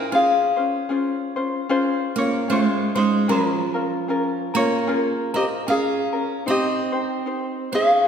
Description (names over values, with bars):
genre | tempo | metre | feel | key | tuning
Hawaiian | 76 BPM | 4/4 | swing 58% on 8ths | unclear | A4 = 439 Hz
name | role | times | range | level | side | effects
ukulele | melody | 0.0-8.1 s | Db4 to G5 | -21 LUFS | left 1 dB | none
picked steel-string acoustic guitar | second line | 0.0-8.0 s | F3 to Db4 | -25 LUFS | right 4 dB | none
ukulele | accompaniment | 0.0-8.1 s | Db4 to C5 | -24 LUFS | left 3 dB | none
room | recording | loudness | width
wet scoring stage reverb, RT60 1.7 s | recorded in a church or concert hall | -19 LUFS | side -7 dB against mid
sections
0.0-8.1 A section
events
none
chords
0.1 Bbm9 (rootless); 3.3 Bbm7/F; 6.5 Abmaj7 (rootless)